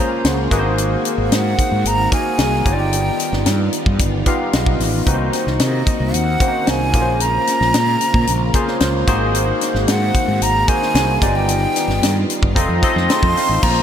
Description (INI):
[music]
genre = polished 1980s jazz-funk pop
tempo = 112 BPM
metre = 4/4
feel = straight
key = Bb minor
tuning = A4 = 440 Hz
[part]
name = breathy jazz flute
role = melody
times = 0.0-13.8 s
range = Eb5 to C6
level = -21 LUFS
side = right 2 dB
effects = none
[part]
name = barky tine electric piano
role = accompaniment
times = 0.0-13.8 s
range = Bb3 to Bb5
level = -20 LUFS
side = left 1 dB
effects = overdrive, analog chorus
[part]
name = string machine, violins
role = sustained chords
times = 0.0-13.8 s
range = Bb2 to Gb4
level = -27 LUFS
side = equal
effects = ensemble chorus
[part]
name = mellow fretless electric bass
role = bass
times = 0.2-13.8 s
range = F1 to C3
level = -20 LUFS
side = equal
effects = none
[part]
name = tight funk drum kit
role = drums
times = 0.2-13.8 s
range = crash cymbal, hi-hat, kick drum, snare drum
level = -19 LUFS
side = equal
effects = none
[sound]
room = moderate lush hall reverb, RT60 2.8 s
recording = bright 1980s-style digital production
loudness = -14 LUFS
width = side -9 dB against mid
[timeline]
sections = 0.0-13.6 A section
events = tine electric piano fill 0.0-0.8, 4.0-5.1, 12.8-13.6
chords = 0.0 Bbm7; 0.5 Ab7; 2.7 G7b13; 5.1 Cm7b5; 6.9 Bbm7; 9.1 Ab7; 11.2 G7b13; 12.6 F7